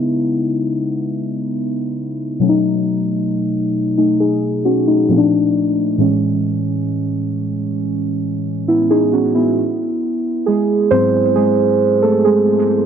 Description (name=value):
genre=R&B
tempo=67 BPM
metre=4/4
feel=straight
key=unclear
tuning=A4 = 440 Hz
part: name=muted felt-like synth keys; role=solo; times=0.0-12.9 s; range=G#2 to B#4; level=-14 LUFS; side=equal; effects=chorus, tape echo
room=light reverb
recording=dry, gritty hardware recording, low-pass filter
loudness=-14 LUFS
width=side -8 dB against mid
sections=0.0-9.6 A section; 9.6-12.9 B section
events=filter sweep 0.0-9.6; synth keys solo 9.6-12.9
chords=0.0 C#m7; 2.4 B7; 5.1 A#maj7; 6.0 Amaj7; 9.6 G#7